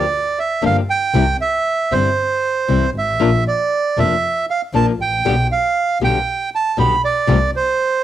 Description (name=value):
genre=tango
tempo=118 BPM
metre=4/4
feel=rubato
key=unclear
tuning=A4 = 440 Hz
part: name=bandoneon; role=melody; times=0.0-8.0 s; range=C5 to B5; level=-17 LUFS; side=right 4 dB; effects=cassette tape
part: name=flamenco guitar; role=accompaniment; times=0.0-7.4 s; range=B2 to G4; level=-20 LUFS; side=left 8 dB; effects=cassette tape
part: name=warm double bass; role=bass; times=0.0-7.5 s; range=F1 to C2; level=-20 LUFS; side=left 1 dB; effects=none
room=light reverb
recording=home recording on cassette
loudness=-15 LUFS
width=side -12 dB against mid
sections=0.0-8.0 A section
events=none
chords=0.0 Gm7; 1.1 C; 3.2 Bb; 5.2 G/B; 7.3 F5/C